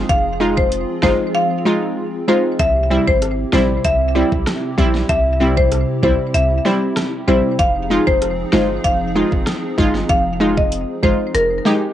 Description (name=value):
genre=dancehall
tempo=96 BPM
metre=4/4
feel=straight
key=F minor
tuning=A4 = 440 Hz
part: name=hollow soft pad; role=sustained chords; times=0.0-11.9 s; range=C3 to Ab4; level=-24 LUFS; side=right 1 dB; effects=ensemble chorus
part: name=punchy sub bass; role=bass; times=0.0-11.6 s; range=F1 to Db2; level=-22 LUFS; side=equal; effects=none
part: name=marimba with hard mallets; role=melody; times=0.1-11.8 s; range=Bb4 to F5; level=-19 LUFS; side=left 1 dB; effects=cassette tape, tape echo
part: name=pop drum kit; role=drums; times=0.1-11.8 s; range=hi-hat, kick drum, rim click, snare drum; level=-20 LUFS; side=equal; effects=overdrive, vintage 12-bit sampler grit
part: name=glassy wavetable pluck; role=accompaniment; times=0.4-11.8 s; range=G3 to G4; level=-19 LUFS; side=equal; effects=chorus, sidechain pumping
room=light reverb, digital ambience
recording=home recording on cassette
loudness=-14 LUFS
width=side -11 dB against mid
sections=0.0-11.9 A section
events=silent gap 1.3-2.6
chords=0.0 Fm7; 2.6 C; 7.6 Fm7